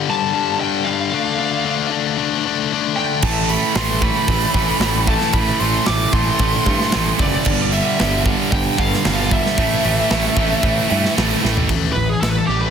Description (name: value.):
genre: heavy metal.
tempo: 114 BPM.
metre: 4/4.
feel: straight.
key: A minor.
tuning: A4 = 440 Hz.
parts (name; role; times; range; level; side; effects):
high-gain distorted guitar; riff; 0.0-12.7 s; G2 to D4; -21 LUFS; left 11 dB; distortion.
smooth overdriven lead guitar; melody; 0.1-12.7 s; G4 to D6; -22 LUFS; equal; digital delay.
high-gain distorted guitar; riff; 3.2-11.7 s; G2 to A3; -22 LUFS; right 18 dB; distortion.
fuzz picked electric bass; bass; 3.2-12.7 s; F#1 to G2; -22 LUFS; right 1 dB; overdrive.
tight metal drum kit; drums; 3.2-12.3 s; crash cymbal, hi-hat, kick drum, snare drum, toms; -20 LUFS; right 2 dB; none.
room: light reverb.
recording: dense, heavily limited modern master.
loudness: -15 LUFS.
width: side -7 dB against mid.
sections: 0.0-11.7 A section; 11.7-12.7 B section.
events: drum fill 11.4; lead electric guitar solo 11.7-12.7.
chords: 0.0 G5; 1.1 Dm; 3.2 Am; 7.5 G5; 9.6 A5.